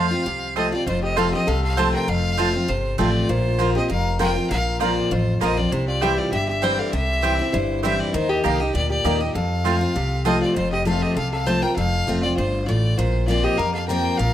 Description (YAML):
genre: bluegrass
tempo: 198 BPM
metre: 4/4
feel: straight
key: F major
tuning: A4 = 441 Hz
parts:
  - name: clear fiddle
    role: melody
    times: 0.0-14.3 s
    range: C5 to A5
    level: -26 LUFS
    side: equal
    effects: none
  - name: picked steel-string acoustic guitar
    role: accompaniment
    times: 0.0-14.3 s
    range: F2 to G4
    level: -23 LUFS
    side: left 2 dB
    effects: none
  - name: mandolin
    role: stabs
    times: 0.0-10.4 s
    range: Bb3 to Bb5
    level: -26 LUFS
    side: right 7 dB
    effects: none
  - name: upright bass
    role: bass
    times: 0.0-14.3 s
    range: F1 to F2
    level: -25 LUFS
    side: equal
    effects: none
  - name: lap resonator guitar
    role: second line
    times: 0.6-14.3 s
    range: Eb4 to C5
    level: -28 LUFS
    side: left 2 dB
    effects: none
room: light reverb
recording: close, detailed microphones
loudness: -19 LUFS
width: side -11 dB against mid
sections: 0.9-10.6 A section; 10.6-14.3 A section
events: none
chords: 0.0 F; 3.3 Bbsus2; 5.7 C; 8.1 Eb; 9.3 F; 13.0 Bbsus2